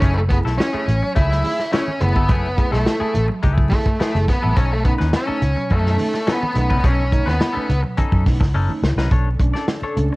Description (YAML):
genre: funk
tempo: 106 BPM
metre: 4/4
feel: straight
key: unclear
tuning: A4 = 439 Hz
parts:
  - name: octave-fuzz lead guitar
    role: melody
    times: 0.0-7.8 s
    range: A3 to E4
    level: -23 LUFS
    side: equal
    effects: distortion, tape echo, plate reverb
  - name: semi-hollow electric guitar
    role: accompaniment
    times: 0.0-10.2 s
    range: A3 to D5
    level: -28 LUFS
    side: left 4 dB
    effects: cassette tape, plate reverb
  - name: tine electric piano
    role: stabs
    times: 0.0-10.1 s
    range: B2 to G#4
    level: -28 LUFS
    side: right 3 dB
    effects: cassette tape, plate reverb
  - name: vintage muted fingered electric bass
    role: bass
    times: 0.0-10.1 s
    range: F#1 to F#2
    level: -19 LUFS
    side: equal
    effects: none
  - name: warm soul drum kit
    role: drums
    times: 0.0-10.1 s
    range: hi-hat, kick drum, snare drum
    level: -20 LUFS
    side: equal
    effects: cassette tape
  - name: congas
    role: percussion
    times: 0.0-10.1 s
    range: none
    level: -30 LUFS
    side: right 2 dB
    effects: none
  - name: string machine, full ensemble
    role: sustained chords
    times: 9.1-10.2 s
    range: C#4 to A4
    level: -29 LUFS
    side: equal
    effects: phaser, ensemble chorus, cassette tape
room: light reverb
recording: home recording on cassette, vinyl crackle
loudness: -16 LUFS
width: side -21 dB against mid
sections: 0.0-9.1 A section; 9.1-10.2 B section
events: drum fill 8.5-9.1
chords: 0.0 F#m9; 4.6 B9; 9.1 Bm9